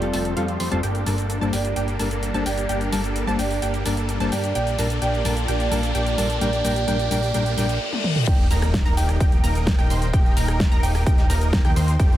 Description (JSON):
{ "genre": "EDM, festival progressive house", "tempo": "129 BPM", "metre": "4/4", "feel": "straight", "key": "unclear", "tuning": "A4 = 440 Hz", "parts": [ { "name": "vibraphone with medium mallets", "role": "melody", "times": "0.0-7.8 s", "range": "D5", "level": "-30 LUFS", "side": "right 4 dB", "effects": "tape echo" }, { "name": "mellow electric guitar", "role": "accompaniment", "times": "0.0-7.7 s", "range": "G2 to C5", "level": "-29 LUFS", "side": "left 4 dB", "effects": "sidechain pumping, tape echo" }, { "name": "lush unison pad", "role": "sustained chords", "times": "0.0-12.2 s", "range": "G3 to G5", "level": "-33 LUFS", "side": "equal", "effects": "chorus, phaser, sidechain pumping" }, { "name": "wide unison pluck", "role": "arpeggios", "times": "0.0-12.2 s", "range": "F5 to C6", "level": "-31 LUFS", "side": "right 1 dB", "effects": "sidechain pumping, tape echo" }, { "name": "supersaw chords", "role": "riff", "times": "0.0-12.2 s", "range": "F3 to C5", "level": "-29 LUFS", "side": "equal", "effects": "sidechain pumping, low-pass filter, tape echo" }, { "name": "fat analog bass", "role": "bass", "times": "0.0-12.2 s", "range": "Eb1 to G2", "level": "-24 LUFS", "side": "equal", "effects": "sidechain pumping" }, { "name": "big-room dance drum kit", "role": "drums", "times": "0.0-12.2 s", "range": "crash cymbal, hi-hat, rim click, shaker, snare drum, toms", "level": "-29 LUFS", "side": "equal", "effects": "none" }, { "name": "riser, reverse cymbal and impact", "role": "sound effects", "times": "0.2-10.1 s", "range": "none", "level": "-32 LUFS", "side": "equal", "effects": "none" }, { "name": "electronic kick drum", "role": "drums", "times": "8.3-12.1 s", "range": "none", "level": "-19 LUFS", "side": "equal", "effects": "none" } ], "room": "light reverb", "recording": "none", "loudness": "-19 LUFS", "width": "side -13 dB against mid", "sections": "0.0-8.3 A section; 8.3-12.2 B section", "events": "build-up 0.0-8.3; filter sweep on supersaw synth 0.0-8.3; riser 0.2-8.3; reverse cymbal 7.3-8.3; drum fill 7.9-8.3; drop 8.3-12.2; impact 8.3-10.1", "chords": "0.0 Fadd9; 0.8 Gm; 4.6 Bb; 8.3 Eb", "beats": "0.37 | 0.83 1.30 1.76 2.23 | 2.69 3.16 3.62 4.09 | 4.55 5.02 5.48 5.95 | 6.41 6.88 7.34 7.81 | 8.27 8.74 9.20 9.67 | 10.13 10.60 11.06 11.53 | 11.99" }